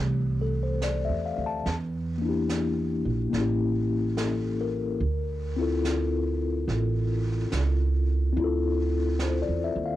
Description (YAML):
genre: jazz ballad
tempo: 72 BPM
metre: 4/4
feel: swing 67% on 8ths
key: D minor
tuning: A4 = 441 Hz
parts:
  - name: tine electric piano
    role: accompaniment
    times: 0.0-10.0 s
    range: E3 to A5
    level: -28 LUFS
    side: left 5 dB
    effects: medium tremolo
  - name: upright bass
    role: bass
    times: 0.0-10.0 s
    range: A1 to E2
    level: -27 LUFS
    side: right 2 dB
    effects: none
  - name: jazz brush drum kit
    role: drums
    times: 0.8-10.0 s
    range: brushed snare drum, hi-hat, snare drum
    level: -38 LUFS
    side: right 2 dB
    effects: cassette tape
room: light reverb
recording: home recording on cassette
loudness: -24 LUFS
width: side -14 dB against mid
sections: 0.0-10.0 A section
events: none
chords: 0.0 Fmaj7; 1.7 Em7b5; 3.3 A7b9; 5.0 Dm9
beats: 0.82 | 1.66 2.49 3.33 4.17 | 5.01 5.84 6.68 7.52 | 8.36 9.20